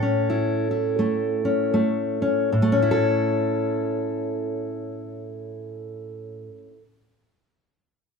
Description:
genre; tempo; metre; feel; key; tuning
folk, solo fingerstyle acoustic guitar; 73-88 BPM; 4/4; swing 61% on 8ths; A major; A4 = 441 Hz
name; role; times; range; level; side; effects
fingerpicked steel-string acoustic guitar; solo; 0.0-6.8 s; A2 to A4; -22 LUFS; left 1 dB; none
room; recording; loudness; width
moderate large studio reverb, RT60 1.2 s; band playing live in one room; -21 LUFS; side -5 dB against mid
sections
0.0-2.5 A section; 2.5-5.8 B section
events
slowing down 0.0-2.5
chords
0.0 A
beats
0.27 0.98 1.73 | 2.52 3.34 4.17 4.99

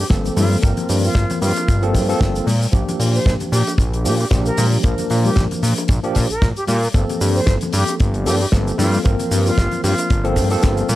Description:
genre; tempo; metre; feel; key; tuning
nu-disco, nu disco; 114 BPM; 4/4; swing 55% on 16ths; unclear; A4 = 436 Hz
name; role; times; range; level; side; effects
concert flute; melody; 0.0-10.2 s; F4 to C5; -26 LUFS; equal; tape echo
fat analog bass; bass; 0.0-11.0 s; G1 to Bb2; -18 LUFS; equal; none
barky tine electric piano; accompaniment; 0.1-10.9 s; F3 to Bb4; -22 LUFS; equal; fast stereo tremolo, sidechain pumping
damped 70s drum kit; drums; 0.1-11.0 s; hi-hat, shaker, snare drum; -26 LUFS; left 1 dB; studio reverb
kick drum; drums; 0.1-10.8 s; none; -17 LUFS; equal; studio reverb
cabasa, congas and bongos; percussion; 0.1-11.0 s; none; -28 LUFS; left 2 dB; none
room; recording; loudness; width
studio ambience; dry, gritty hardware recording; -15 LUFS; side -15 dB against mid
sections
0.0-11.0 A section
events
none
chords
0.0 Gm11; 2.5 Bb6; 6.9 Gm11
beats
0.10 | 0.63 1.16 1.68 2.21 | 2.73 3.26 3.79 4.31 | 4.84 5.37 5.89 6.42 | 6.95 7.47 8.00 8.53 | 9.05 9.58 10.10 10.63

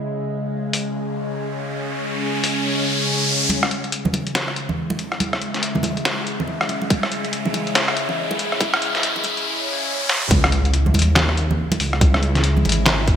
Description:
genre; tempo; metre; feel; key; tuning
deep dubstep; 141 BPM; 4/4; swing 61% on 16ths, half-time; C# minor; A4 = 441 Hz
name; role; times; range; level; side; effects
bowed-like drone; sustained chords; 0.0-13.2 s; C#3 to E4; -26 LUFS; left 1 dB; built-in reverb, phaser
riser, swell and impact; sound effects; 1.4-12.0 s; none; -25 LUFS; equal; none
trip hop sampler-style drum kit; drums; 0.7-13.2 s; handclaps, hi-hat, rim click, snare drum; -21 LUFS; left 1 dB; high-pass filter on hats, small room ambience, high-pass filter on snare
congas; percussion; 3.5-12.8 s; none; -25 LUFS; right 2 dB; dub echo
electronic kick drum; drums; 6.9-13.2 s; none; -16 LUFS; equal; small room ambience
dark detuned saw bass; bass; 10.3-13.2 s; G#1 to D#2; -19 LUFS; equal; none
room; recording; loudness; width
moderate lush hall reverb, RT60 2.3 s; bright 1980s-style digital production, high-pass filter; -18 LUFS; side -9 dB against mid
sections
0.0-3.5 A section; 3.5-10.3 B section; 10.3-13.2 C section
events
filter sweep on synth drone 0.0-3.5, 3.5-10.3; riser 1.4-3.5, 3.5-10.3; build-up 3.5-10.3; swell 9.5-10.3; drum fill 10.1; drop 10.3-13.2; impact 10.3-12.0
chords
0.0 C#5; 3.5 C#m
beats
| 0.10 0.52 0.95 1.37 | 1.80 2.22 2.65 3.07 | 3.50 3.92 4.35 4.78 | 5.20 5.63 6.05 6.48 | 6.90 7.33 7.75 8.18 | 8.61 9.03 9.46 9.88 | 10.31 10.73 11.16 11.58 | 12.01 12.44 12.86

